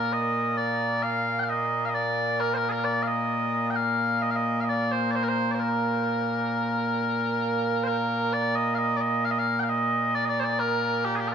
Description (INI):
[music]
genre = scottish traditional, Scottish pipe music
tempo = 66 BPM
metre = 3/4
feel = straight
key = Bb major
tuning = A4 = 440 Hz
[part]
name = mellow small bagpipes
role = solo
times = 0.0-11.3 s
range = Bb2 to G5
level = -23 LUFS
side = equal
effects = slapback echo
[sound]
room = moderate huge ambient reverb, RT60 8.2 s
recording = none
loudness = -23 LUFS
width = side -8 dB against mid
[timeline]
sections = 0.0-8.3 A section; 8.3-11.3 A section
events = none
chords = none